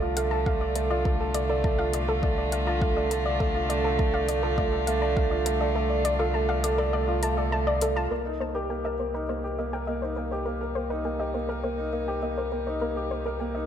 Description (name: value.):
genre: piano and strings electronica.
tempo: 102 BPM.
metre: 4/4.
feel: straight.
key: C dorian.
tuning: A4 = 442 Hz.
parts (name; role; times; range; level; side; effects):
warm string quartet; sustained chords; 0.0-13.7 s; C3 to F4; -33 LUFS; left 2 dB; none.
warm upright piano; riff; 0.0-13.7 s; A3 to D5; -28 LUFS; right 2 dB; ping-pong delay.
round analog bass; bass; 0.0-13.7 s; C2; -31 LUFS; equal; sidechain pumping.
soft round pluck; arpeggios; 0.2-13.6 s; A4 to A5; -32 LUFS; left 2 dB; chorus, cassette tape, sidechain pumping, ping-pong delay.
electronic hi-hat; drums; 0.2-7.9 s; none; -33 LUFS; left 3 dB; low-pass filter on hats, low-pass filter on room.
electronic kick drum; drums; 0.5-5.3 s; none; -27 LUFS; equal; none.
room: moderate lush hall reverb, RT60 2.3 s.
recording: none.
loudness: -24 LUFS.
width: side -9 dB against mid.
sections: 0.0-8.1 A section; 8.1-13.7 B section.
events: kick drops out 5.8-8.1; filter sweep on synth arpeggio sound 8.1-13.7.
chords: 0.0 Dm/C; 8.1 Cm7.